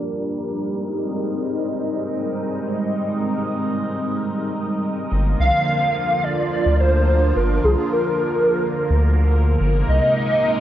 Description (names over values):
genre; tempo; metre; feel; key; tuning
IDM; free time; none; none; unclear; A4 = 441 Hz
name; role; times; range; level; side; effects
warbly nostalgic lead; melody; 0.0-0.4, 5.4-10.6 s; Ab4 to F5; -21 LUFS; equal; ensemble chorus, digital delay
phased analog pad; sustained chords; 0.0-10.6 s; C3 to Eb5; -22 LUFS; right 1 dB; phaser, chorus
round analog bass; bass; 5.1-10.0 s; G1 to D2; -17 LUFS; equal; none
room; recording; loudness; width
moderate huge ambient reverb, RT60 8.9 s; worn, warbling old tape, cassette tape, warbly pitch drift, low-pass filter; -18 LUFS; side -12 dB against mid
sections
0.0-5.1 A section; 5.1-10.6 B section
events
filter sweep on analog synth pad 0.0-5.1; filter sweep 0.0-5.1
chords
0.0 Bb; 0.6 Abadd9/G; 5.1 Bb/G; 9.6 Abadd9/G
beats
free time